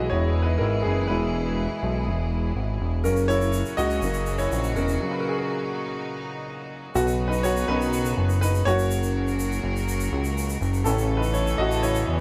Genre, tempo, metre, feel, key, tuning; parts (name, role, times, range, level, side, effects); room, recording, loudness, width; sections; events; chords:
piano-driven pop; 123 BPM; 4/4; straight; A4 = 441 Hz
clear concert grand piano; accompaniment; 0.0-12.2 s; C#3 to E5; -29 LUFS; equal
rich studio string section; sustained chords; 0.0-12.2 s; A#2 to A#4; -34 LUFS; equal
fat analog bass; bass; 0.0-12.2 s; E1 to E2; -27 LUFS; equal
egg shaker; percussion; 3.0-12.1 s; -40 LUFS; equal
moderate studio ambience, RT60 0.5 s; band playing live in one room; -25 LUFS; mono
0.0-7.0 A section; 7.0-12.2 B section
grand piano solo 0.0-7.0, 7.0-12.2; break 5.0-7.0
0.0 E; 7.0 Badd9; 8.7 F#; 10.9 A